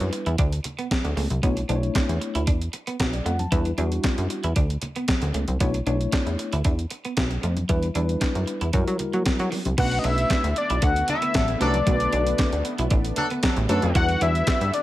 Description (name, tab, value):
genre	early-eighties boogie funk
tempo	115 BPM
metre	4/4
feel	straight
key	B minor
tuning	A4 = 441 Hz
part	mellow tine electric piano	accompaniment	0.0-14.6 s	G3 to A5	-28 LUFS	left 2 dB	fast stereo tremolo
part	plucky analog bass	bass	0.0-14.7 s	A1 to F#3	-24 LUFS	equal	none
part	crisp 8-bit digital drum machine	drums	0.0-14.8 s	crash cymbal, handclaps, hi-hat, kick drum, snare drum	-25 LUFS	equal	overdrive, gated reverb
part	electric guitar at the edge of break-up	riff	0.1-14.8 s	F#3 to E4	-33 LUFS	right 3 dB	lush chorus
part	congas	percussion	0.7-14.6 s	none	-34 LUFS	left 2 dB	none
part	fat analog lead	melody	9.8-14.8 s	D5 to F#5	-24 LUFS	left 2 dB	chorus
part	lush unison pad	sustained chords	10.6-14.8 s	D3 to F#4	-34 LUFS	equal	chorus
part	warm horn section	second line	11.1-14.0 s	F#3 to A4	-29 LUFS	right 1 dB	none
room	light reverb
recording	none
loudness	-21 LUFS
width	side -15 dB against mid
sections	0.0-9.8 A section; 9.8-14.8 B section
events	none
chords	0.0 Em7; 1.4 Bm11; 3.5 Em7; 5.6 Bm11; 7.7 Em7; 8.7 F#7b9; 9.8 Bm9; 14.0 Em9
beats	0.39 0.91 | 1.43 1.95 2.47 3.00 | 3.52 4.04 4.56 5.08 | 5.61 6.13 6.65 7.17 | 7.69 8.21 8.73 9.26 | 9.78 10.30 10.82 11.34 | 11.87 12.39 12.91 13.43 | 13.95 14.47